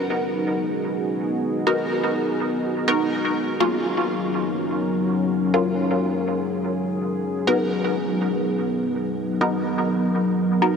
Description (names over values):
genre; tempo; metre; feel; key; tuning
dub techno; free time; none; none; unclear; A4 = 440 Hz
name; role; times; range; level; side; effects
deep dark ambient pad; sustained chords; 0.0-10.8 s; Gb3 to Bb4; -23 LUFS; left 1 dB; chorus, built-in reverb
filtered dub chord stab; stabs; 0.0-10.8 s; Gb3 to Bb4; -24 LUFS; equal; phaser, dub echo
room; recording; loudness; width
wet huge ambient reverb, RT60 5.0 s; dreamy mix soaked in reverb; -20 LUFS; side -6 dB against mid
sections
0.0-10.8 A section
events
none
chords
0.0 Abm7; 3.4 Ebm7; 7.2 Abm7